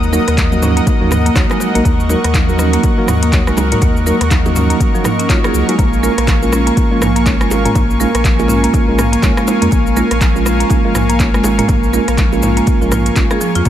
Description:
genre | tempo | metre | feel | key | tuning
afro house | 122 BPM | 4/4 | swing 59% on 16ths | Bb minor | A4 = 440 Hz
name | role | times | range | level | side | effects
warm analog pad | sustained chords | 0.0-13.7 s | Bb4 to Eb6 | -21 LUFS | equal | chorus, tremolo, sidechain pumping
warm sub bass | bass | 0.0-13.7 s | F1 to F2 | -17 LUFS | equal | sidechain pumping
afro-pop drum kit | drums | 0.0-13.7 s | cabasa, handclaps, hi-hat, rim click, toms | -21 LUFS | equal | studio reverb
marimba with medium hard mallets | arpeggios | 0.1-13.7 s | F3 to Bb4 | -18 LUFS | right 1 dB | sidechain pumping, analog delay
mellow tine electric piano | stabs | 0.1-13.4 s | Gb3 to Db5 | -18 LUFS | right 2 dB | slow stereo tremolo, sidechain pumping, analog delay
bongos | percussion | 0.1-13.7 s | none | -26 LUFS | right 2 dB | none
electronic kick drum | drums | 0.4-13.7 s | none | -15 LUFS | equal | overdrive, studio reverb
room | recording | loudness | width
light reverb | none | -11 LUFS | side -11 dB against mid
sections
0.0-13.7 A section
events
none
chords
0.0 Ebm; 5.8 Bbm7

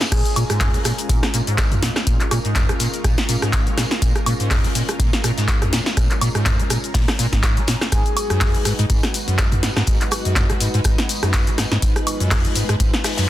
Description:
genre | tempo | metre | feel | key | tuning
acid house | 123 BPM | 4/4 | swing 56% on 16ths | Bb phrygian | A4 = 441 Hz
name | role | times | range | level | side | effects
string machine, full ensemble | sustained chords | 0.0-13.3 s | Ab3 to Cb5 | -28 LUFS | equal | ensemble chorus, sidechain pumping
modern studio drum kit | drums | 0.0-13.3 s | hi-hat, snare drum, tambourine | -32 LUFS | left 1 dB | sidechain pumping on hats, high-pass filter on hats, soft clipping on snare, high-pass filter on snare, sidechain pumping on perc, high-pass filter on perc, high-pass filter on room
punchy analog drum machine | drums | 0.0-13.3 s | crash cymbal, handclaps, hi-hat, rim click, shaker, snare drum, toms, woodblock | -22 LUFS | equal | none
breathy flute-like synth lead | melody | 0.1-0.8, 7.9-8.6 s | Ab4 | -30 LUFS | left 2 dB | wide subtle chorus, tape echo
liquid acid bass | riff | 0.1-13.3 s | Gb2 to Bb3 | -23 LUFS | equal | overdrive, wide subtle chorus, sidechain pumping
electronic kick drum | drums | 0.1-12.9 s | none | -20 LUFS | equal | overdrive
room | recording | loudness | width
small room ambience | dense, heavily limited modern master | -16 LUFS | side -14 dB against mid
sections
0.1-13.3 A section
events
drop 0.1-13.3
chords
0.1 Bbm7; 7.9 Abm7

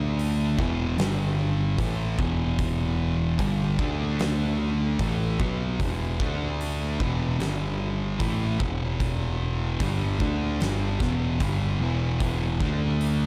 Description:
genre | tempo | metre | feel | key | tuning
stoner and doom metal | 75 BPM | 4/4 | straight | E minor | A4 = 441 Hz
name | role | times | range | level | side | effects
thick fuzz guitar | riff | 0.0-13.3 s | E2 to D4 | -32 LUFS | equal | distortion
thick fuzz guitar | riff | 0.0-13.3 s | E2 to D4 | -31 LUFS | equal | distortion
growling picked electric bass | bass | 0.0-13.3 s | E1 to D2 | -31 LUFS | equal | overdrive
oversized low-tuned drum kit | drums | 0.2-13.2 s | hi-hat, kick drum, snare drum | -33 LUFS | equal | none
room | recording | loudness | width
small room ambience | dark, warm production | -26 LUFS | mono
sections
0.0-13.3 A section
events
none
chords
0.0 D5; 0.6 E5; 1.0 G5; 1.8 Em; 3.8 D5; 5.0 E5; 6.2 D5; 7.0 E5; 7.4 G5; 8.2 Em; 12.6 D5

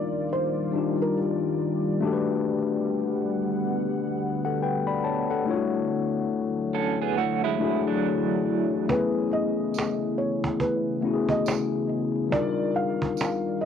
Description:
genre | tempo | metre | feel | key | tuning
lo-fi hip hop | 70 BPM | 4/4 | swing 61% on 16ths | unclear | A4 = 442 Hz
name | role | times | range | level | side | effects
felt-muted upright piano | melody | 0.0-1.2, 8.9-13.7 s | A#4 to E#5 | -30 LUFS | right 2 dB | cassette tape, analog delay
mellow tine electric piano | accompaniment | 0.0-13.7 s | G3 to B5 | -26 LUFS | left 6 dB | none
deep dark ambient pad | sustained chords | 0.0-13.7 s | C#3 to F#5 | -31 LUFS | right 3 dB | chorus, built-in reverb
electric guitar through a small old amp | second line | 6.7-8.9 s | F#3 to A4 | -27 LUFS | right 11 dB | tremolo, analog delay
cajon | drums | 8.9-13.7 s | none | -30 LUFS | right 3 dB | vintage 12-bit sampler grit, cassette tape
tambourine | percussion | 9.7-13.4 s | none | -42 LUFS | right 16 dB | none
room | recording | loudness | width
moderate booth ambience, RT60 0.3 s | home recording on cassette | -23 LUFS | side -8 dB against mid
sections
0.0-13.7 A section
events
none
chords
0.0 D#maj9; 2.0 Gmaj9; 5.5 Dmaj9; 8.9 Amaj9; 12.3 D#maj9

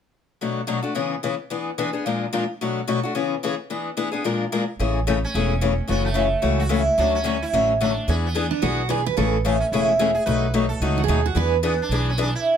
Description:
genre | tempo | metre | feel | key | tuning
acoustic string swing (jazz manouche) | 220 BPM | 4/4 | swing 57% on 8ths | A major | A4 = 440 Hz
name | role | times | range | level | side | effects
picked steel-string acoustic guitar | accompaniment | 0.4-12.3 s | Bb2 to Bb4 | -23 LUFS | left 5 dB | none
upright bass | bass | 4.8-12.3 s | E1 to E2 | -24 LUFS | right 1 dB | none
sitar | melody | 5.1-12.6 s | A3 to B4 | -24 LUFS | right 3 dB | plate reverb
picked steel-string acoustic guitar | second line | 8.5-11.6 s | D4 to B4 | -24 LUFS | right 10 dB | none
room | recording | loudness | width
moderate studio reverb, RT60 0.5 s | none | -20 LUFS | side -8 dB against mid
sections
0.4-4.8 A section; 4.8-12.6 B section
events
none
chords
0.4 Bm7; 1.0 C#m7; 1.5 E7; 2.1 Bb7; 2.6 Bm7; 3.2 C#m7; 3.7 E7; 4.3 Bb7; 4.8 Amaj7; 5.9 F#m7; 7.0 Dmaj7; 8.1 E7; 9.2 Amaj7; 10.3 B7; 11.4 E7

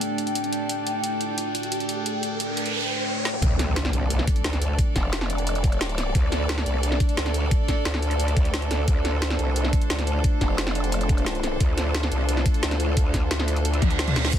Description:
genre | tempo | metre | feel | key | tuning
dark technical drum and bass | 176 BPM | 4/4 | straight | D minor | A4 = 437 Hz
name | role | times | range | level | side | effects
deep dark ambient pad | sustained chords | 0.0-14.4 s | A3 to G5 | -30 LUFS | equal | chorus, built-in reverb, sidechain pumping
drum and bass drum kit | drums | 0.0-14.4 s | crash cymbal, hi-hat, snare drum, toms | -28 LUFS | equal | overdrive, high-pass filter on hats, small room ambience, high-pass filter on snare, high-pass filter on toms, high-pass filter on cymbals
riser, noise sweep, impact and reverse cymbal | sound effects | 0.0-4.8, 13.8-14.3 s | none | -30 LUFS | right 2 dB | none
rich chamber string section | texture | 0.0-14.4 s | D4 to D5 | -32 LUFS | equal | sidechain pumping
growl bass | bass | 3.4-14.4 s | F1 to D2 | -25 LUFS | equal | chorus, overdrive, sidechain pumping
electronic kick drum | drums | 3.4-14.4 s | none | -22 LUFS | equal | overdrive, small room ambience
room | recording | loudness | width
little or no reverb | dense, heavily limited modern master | -21 LUFS | side -10 dB against mid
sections
0.0-3.4 A section; 3.4-14.4 B section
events
build-up 0.0-3.4; riser 0.0-3.4; noise sweep 2.1-3.4; drum fill 3.3, 13.8-14.3; drop 3.4-14.4; impact 3.4-4.8; reverse cymbal 13.8-14.3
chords
0.0 D5

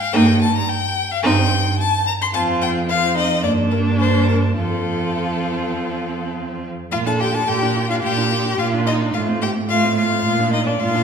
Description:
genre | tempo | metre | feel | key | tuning
quick classical-period movement for string quartet | 102-110 BPM | 4/4 | rubato | Bb major | A4 = 436 Hz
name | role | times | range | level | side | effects
warm violin | melody | 0.0-11.0 s | A4 to C6 | -21 LUFS | left 5 dB | none
rich violin | second line | 0.1-11.0 s | D4 to A4 | -24 LUFS | left 2 dB | none
rich viola | accompaniment | 0.1-11.0 s | A3 to F4 | -23 LUFS | right 1 dB | none
rich cello | bass | 0.1-11.0 s | F2 to Bb2 | -21 LUFS | right 4 dB | none
room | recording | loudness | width
wet recital hall reverb, RT60 1.4 s | recorded in a church or concert hall | -16 LUFS | side -7 dB against mid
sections
0.0-6.9 A section; 6.9-11.0 B section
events
none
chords
0.1 Eb/G; 1.2 Cm/G; 2.3 F5; 3.4 Gm; 4.6 F; 6.9 Bb; 9.1 F/A; 10.2 Bb

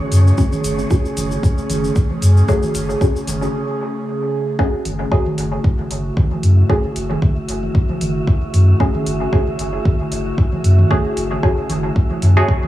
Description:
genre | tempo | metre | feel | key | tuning
dub techno | 114 BPM | 4/4 | swing 56% on 16ths | F# minor | A4 = 441 Hz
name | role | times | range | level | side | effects
airy breathy pad | sustained chords | 0.0-12.7 s | C#3 to G#4 | -24 LUFS | right 1 dB | chorus, sidechain pumping
electronic toms and congas | percussion | 0.0-12.7 s | none | -26 LUFS | right 1 dB | overdrive, sidechain pumping on toms, small room ambience, sidechain pumping on perc, dub echo
wind-like tuned noise texture | texture | 0.0-12.7 s | C#4 to E5 | -31 LUFS | right 2 dB | built-in reverb, sidechain pumping
soft dub sub bass | bass | 0.1-12.4 s | F#1 to F#2 | -15 LUFS | equal | sidechain pumping
electronic hi-hat | drums | 0.1-12.3 s | none | -31 LUFS | equal | small room ambience
tube shaker | percussion | 0.1-3.5 s | none | -32 LUFS | left 3 dB | none
filtered dub chord stab | stabs | 0.4-12.6 s | A3 to G#4 | -23 LUFS | equal | chorus, phaser, sidechain pumping, dub echo
electronic kick drum | drums | 0.4-12.6 s | none | -16 LUFS | equal | small room ambience
room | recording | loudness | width
light reverb | small room ambience | -15 LUFS | side -14 dB against mid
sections
0.0-4.6 A section; 4.6-12.7 A section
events
filter sweep on synth stab 0.0-4.6; break 3.5-4.6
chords
0.0 F#madd9

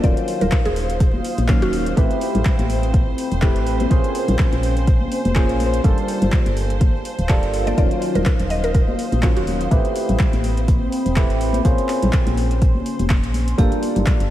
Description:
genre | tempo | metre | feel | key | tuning
deep house | 124 BPM | 4/4 | swing 56% on 16ths | unclear | A4 = 440 Hz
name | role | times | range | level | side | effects
mallet-like synth pluck | melody | 0.0-2.0, 7.7-9.4 s | Gb4 to Eb5 | -27 LUFS | right 2 dB | chorus, ping-pong delay
deep dark ambient pad | sustained chords | 0.6-14.3 s | C4 to Eb6 | -30 LUFS | equal | chorus, built-in reverb, sidechain pumping
percussive organ stab | stabs | 0.0-14.3 s | Eb3 to F5 | -24 LUFS | equal | chorus, phaser, sidechain pumping, analog delay
woody FM bass | bass | 0.0-14.3 s | D1 to Bb1 | -22 LUFS | equal | sidechain pumping
deep house drum kit | drums | 0.0-14.3 s | handclaps, hi-hat | -31 LUFS | equal | none
electronic kick drum | drums | 0.0-14.2 s | none | -17 LUFS | equal | none
warm symphonic violin section | texture | 0.0-13.6 s | C5 | -31 LUFS | equal | none
congas | percussion | 0.4-14.0 s | none | -26 LUFS | left 3 dB | none
vibraphone with medium hard mallets | melody | 13.6-13.8 s | Bb3 to G4 | -27 LUFS | right 1 dB | ping-pong delay
room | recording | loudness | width
light reverb, digital ambience | vinyl crackle | -16 LUFS | side -13 dB against mid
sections
0.0-13.6 A section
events
none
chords
0.0 Ebm7; 2.0 Am7; 3.9 Bbm7; 5.8 Gm7; 7.8 Ebm7; 9.7 Am7; 11.6 Bbm7; 13.6 Gm7

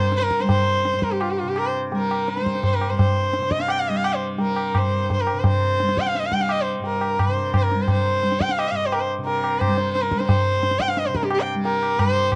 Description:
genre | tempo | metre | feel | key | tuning
indian classical, Hindustani | 172 BPM | 7/4 | straight | G raga malkauns | A4 = 440 Hz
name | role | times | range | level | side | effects
rich sarangi | melody | 0.0-12.3 s | F4 to G5 | -24 LUFS | equal | none
tanpura | drone | 0.0-12.4 s | G2 to G3 | -30 LUFS | equal | none
tabla | percussion | 0.1-12.4 s | none | -26 LUFS | equal | none
room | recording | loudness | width
little or no reverb | dry, close 1970s-style studio recording | -22 LUFS | mono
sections
0.0-12.4 A section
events
speeding up 0.0-12.4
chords
none

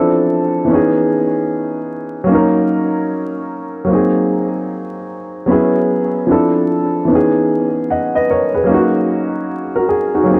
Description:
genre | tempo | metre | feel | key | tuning
hip hop | 75 BPM | 4/4 | swing 65% on 16ths | C# dorian | A4 = 438 Hz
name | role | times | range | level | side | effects
dark upright piano | solo | 0.0-10.4 s | E3 to F#5 | -16 LUFS | equal | low-pass filter, analog delay
room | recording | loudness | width
moderate plate reverb, RT60 3.7 s | dark, warm production, vinyl crackle | -16 LUFS | mono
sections
0.0-10.4 A section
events
none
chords
0.0 Dm7; 0.7 C#m7; 2.3 D#m7; 3.9 G#7; 5.5 F#9sus4; 6.3 Dm7; 7.1 C#m7; 8.7 D#m7

